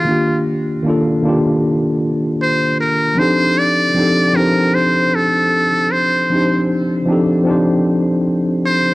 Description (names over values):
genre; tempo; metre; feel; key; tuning
hip hop; 77 BPM; 4/4; swing 63% on 16ths; unclear; A4 = 438 Hz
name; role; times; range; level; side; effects
trumpet with metal mute; melody; 0.0-8.9 s; F4 to D5; -16 LUFS; equal; cassette tape
mellow tine electric piano; accompaniment; 0.0-8.9 s; Eb3 to C5; -15 LUFS; equal; medium stereo tremolo, cassette tape
room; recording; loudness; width
light reverb, studio reverb; home recording on cassette; -13 LUFS; side -20 dB against mid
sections
0.0-8.9 A section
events
none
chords
0.1 Ebmaj9; 3.2 F13